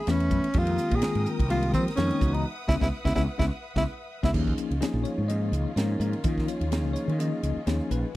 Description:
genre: electric jazz fusion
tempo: 126 BPM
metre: 4/4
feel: swing 56% on 16ths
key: unclear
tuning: A4 = 441 Hz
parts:
  - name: breathy tenor saxophone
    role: melody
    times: 0.0-4.3 s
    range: C4 to Ab4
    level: -29 LUFS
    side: right 1 dB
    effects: slapback echo
  - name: rich symphonic string section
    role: sustained chords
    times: 0.0-8.2 s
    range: Eb3 to Eb6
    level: -39 LUFS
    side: equal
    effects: none
  - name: bell-like tine electric piano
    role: accompaniment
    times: 0.1-8.2 s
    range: Eb3 to Eb5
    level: -30 LUFS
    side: left 3 dB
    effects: medium stereo tremolo
  - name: mellow fretless electric bass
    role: bass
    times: 0.1-8.0 s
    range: Bb1 to F3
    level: -27 LUFS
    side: equal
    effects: none
  - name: crisp fusion drum kit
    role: drums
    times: 0.1-8.0 s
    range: crash cymbal, hi-hat, kick drum, ride cymbal, snare drum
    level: -29 LUFS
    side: right 1 dB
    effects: none
room: little or no reverb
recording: dry, close 1970s-style studio recording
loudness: -24 LUFS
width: side -16 dB against mid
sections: 0.0-4.4 A section; 4.4-8.2 B section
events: band accent 2.5-4.4; tine electric piano fill 3.4-4.4; drum fill 4.1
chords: 0.0 Gbm11; 0.5 Fm11; 2.2 Dbm11; 4.4 Eb9sus4

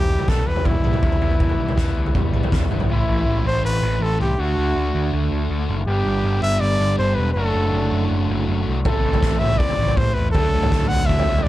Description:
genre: indie rock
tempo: 161 BPM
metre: 4/4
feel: straight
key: unclear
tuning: A4 = 440 Hz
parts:
  - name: clear trumpet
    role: melody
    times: 0.0-11.5 s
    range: E4 to F#5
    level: -24 LUFS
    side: equal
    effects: plate reverb
  - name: fuzz guitar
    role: riff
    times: 0.0-11.5 s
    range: A2 to G4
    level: -27 LUFS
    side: left 4 dB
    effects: distortion
  - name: overdriven semi-hollow guitar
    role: riff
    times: 0.0-11.5 s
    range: A2 to G4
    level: -27 LUFS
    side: right 4 dB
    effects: lush chorus
  - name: overdriven picked electric bass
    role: bass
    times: 0.0-11.4 s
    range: E1 to E2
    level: -22 LUFS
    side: equal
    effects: none
  - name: loose indie drum kit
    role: drums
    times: 0.0-2.9, 8.8-11.5 s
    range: kick drum, snare drum, toms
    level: -20 LUFS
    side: equal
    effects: none
room: light reverb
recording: dark, warm production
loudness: -17 LUFS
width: side -15 dB against mid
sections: 0.0-2.9 A section; 2.9-11.5 B section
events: none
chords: 0.0 Em; 2.9 Amadd9; 4.4 D; 5.9 G; 7.4 D/F#; 8.9 Am; 10.3 D

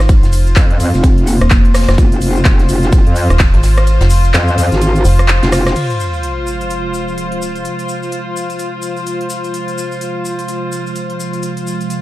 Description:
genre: bass house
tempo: 127 BPM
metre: 4/4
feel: swing 60% on 16ths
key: F minor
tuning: A4 = 440 Hz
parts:
  - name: metallic FM bass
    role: bass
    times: 0.0-5.4 s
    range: Eb1 to Ab1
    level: -11 LUFS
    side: equal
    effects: tube saturation, sidechain pumping
  - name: big-room dance drum kit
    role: drums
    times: 0.0-12.0 s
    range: crash cymbal, handclaps, hi-hat, ride cymbal, rim click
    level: -21 LUFS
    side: equal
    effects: none
  - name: tight funk drum kit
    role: drums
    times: 0.0-5.8 s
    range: hi-hat, snare drum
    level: -30 LUFS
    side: right 2 dB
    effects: none
  - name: tube shaker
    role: percussion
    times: 0.0-12.0 s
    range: none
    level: -31 LUFS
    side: left 4 dB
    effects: none
  - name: warm studio string section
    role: texture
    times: 0.0-12.0 s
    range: F4 to C5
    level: -21 LUFS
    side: left 2 dB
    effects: sidechain pumping
  - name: electronic kick drum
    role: drums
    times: 0.1-3.5 s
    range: none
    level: -10 LUFS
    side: equal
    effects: none
  - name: metallic wobble bass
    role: bass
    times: 0.6-5.7 s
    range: F1 to F2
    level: -13 LUFS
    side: equal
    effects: chorus, overdrive, sidechain pumping
  - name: marimba with soft mallets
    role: melody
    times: 0.8-1.5 s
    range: Bb3 to C4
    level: -21 LUFS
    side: left 1 dB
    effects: tape echo
  - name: sweeping resonant pad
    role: sustained chords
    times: 5.8-12.0 s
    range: C3 to F4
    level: -23 LUFS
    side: right 2 dB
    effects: chorus, sidechain pumping
  - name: sub drop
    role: sound effects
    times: 5.8-7.7 s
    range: none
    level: -23 LUFS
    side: equal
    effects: none
room: small room ambience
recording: dark, warm production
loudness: -11 LUFS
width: side -16 dB against mid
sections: 0.0-5.8 A section; 5.8-12.0 B section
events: drop 0.0-5.8; kick drops out 3.9-5.8; impact 5.8-7.7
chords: 0.0 Fm

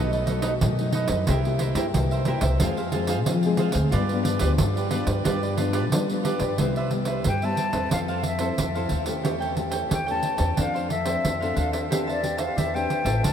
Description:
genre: samba and choro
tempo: 90 BPM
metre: 4/4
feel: straight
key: C major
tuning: A4 = 443 Hz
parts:
  - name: cavaquinho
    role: accompaniment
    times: 0.0-13.3 s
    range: D4 to A5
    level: -30 LUFS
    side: right 4 dB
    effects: none
  - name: nylon-string guitar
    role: accompaniment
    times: 0.0-13.3 s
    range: F#2 to A4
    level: -29 LUFS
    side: left 3 dB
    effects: lush chorus
  - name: upright bass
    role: bass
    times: 0.0-13.3 s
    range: A1 to G3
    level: -26 LUFS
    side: left 1 dB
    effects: none
  - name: pandeiro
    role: percussion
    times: 0.1-13.3 s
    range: none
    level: -28 LUFS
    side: right 3 dB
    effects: none
  - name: mellow jazz flute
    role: melody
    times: 7.3-13.3 s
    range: D5 to A5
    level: -28 LUFS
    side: left 3 dB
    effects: ping-pong delay
room: moderate huge ambient reverb, RT60 8.4 s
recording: dreamy mix soaked in reverb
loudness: -22 LUFS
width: side -8 dB against mid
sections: 0.0-6.6 A section; 6.6-13.3 B section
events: none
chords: 0.0 B7; 1.3 C7; 2.6 Fm; 3.9 G7; 6.6 Cmaj7; 7.9 Fmaj7; 9.3 A7/E; 10.6 Dm7/F; 11.9 Am7/E

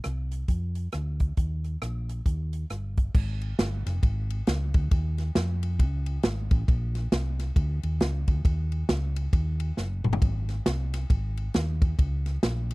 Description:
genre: uptempo gospel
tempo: 136 BPM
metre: 4/4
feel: swing 61% on 8ths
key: unclear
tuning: A4 = 440 Hz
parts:
  - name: swinging big-band drum kit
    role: drums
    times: 0.0-12.7 s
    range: crash cymbal, hi-hat, kick drum, ride cymbal, rim click, snare drum, toms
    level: -25 LUFS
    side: equal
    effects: none
  - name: hollow-body short-scale fingered electric bass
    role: bass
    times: 0.1-12.7 s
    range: F1 to F2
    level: -28 LUFS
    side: equal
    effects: none
room: little or no reverb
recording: dry, close 1970s-style studio recording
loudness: -25 LUFS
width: side -23 dB against mid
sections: 0.0-3.2 A section; 3.2-12.7 B section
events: drum fill 9.8-10.2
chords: none

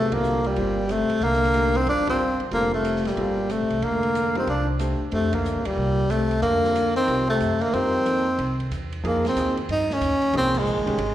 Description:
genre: modal jazz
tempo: 184 BPM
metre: 4/4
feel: swing 64% on 8ths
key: unclear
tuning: A4 = 439 Hz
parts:
  - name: breathy tenor saxophone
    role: melody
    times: 0.0-11.1 s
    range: G3 to Eb4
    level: -22 LUFS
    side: equal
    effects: slapback echo
  - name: warm trombone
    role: second line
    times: 0.0-8.7 s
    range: Bb2 to F3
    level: -31 LUFS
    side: left 3 dB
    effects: slapback echo
  - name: warm grand piano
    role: accompaniment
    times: 0.0-11.0 s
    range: Eb3 to C5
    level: -31 LUFS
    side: right 1 dB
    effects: slapback echo
  - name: upright bass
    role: bass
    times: 0.0-11.1 s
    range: F1 to G2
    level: -28 LUFS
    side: right 1 dB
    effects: none
  - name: open jazz drum kit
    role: drums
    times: 0.1-11.1 s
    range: crash cymbal, hi-hat, kick drum, ride cymbal, rim click, snare drum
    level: -36 LUFS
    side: right 2 dB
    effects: none
room: light reverb, small room ambience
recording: live gig heard through the venue's PA, recital hall reverb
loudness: -20 LUFS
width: side -12 dB against mid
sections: 0.0-9.0 A section; 9.0-11.1 B section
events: band accent 0.1, 2.0, 5.3, 10.5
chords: 0.0 C13sus4; 3.8 F13sus4; 9.0 Fm9

